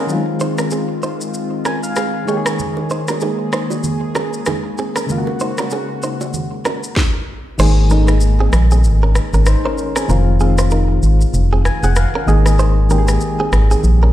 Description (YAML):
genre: afrobeats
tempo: 96 BPM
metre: 4/4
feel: swing 58% on 16ths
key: Ab mixolydian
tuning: A4 = 440 Hz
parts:
  - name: soft electric-piano-like synth keys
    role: accompaniment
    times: 0.0-14.1 s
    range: Db3 to Ab5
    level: -21 LUFS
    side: left 2 dB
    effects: chorus, tremolo
  - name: lush unison pad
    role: sustained chords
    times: 0.0-6.9 s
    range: Db3 to Ab4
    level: -24 LUFS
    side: equal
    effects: chorus
  - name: direct-recorded clean electric guitar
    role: riff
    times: 0.0-14.1 s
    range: C4 to C5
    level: -24 LUFS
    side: right 4 dB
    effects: digital delay
  - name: afro-pop drum kit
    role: drums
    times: 0.1-14.0 s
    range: crash cymbal, kick drum, rim click, shaker, snare drum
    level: -23 LUFS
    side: equal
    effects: none
  - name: congas and bongos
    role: percussion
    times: 2.6-6.8 s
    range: none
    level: -27 LUFS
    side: right 6 dB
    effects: none
  - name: organ-like FM bass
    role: bass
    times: 7.6-14.1 s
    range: F1 to Bb1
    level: -12 LUFS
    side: equal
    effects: none
room: digital ambience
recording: played on a big sound system in a bare room, large studio reverb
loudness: -14 LUFS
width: side -13 dB against mid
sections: 0.0-7.6 A section; 7.6-14.1 B section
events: synth keys fill 1.3-2.6, 11.3-12.6; kick muted 7.6-14.1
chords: 0.1 Fm7; 2.3 Absus2; 5.1 Gbadd9; 7.6 Absus2; 10.1 Fm7; 12.3 Absus2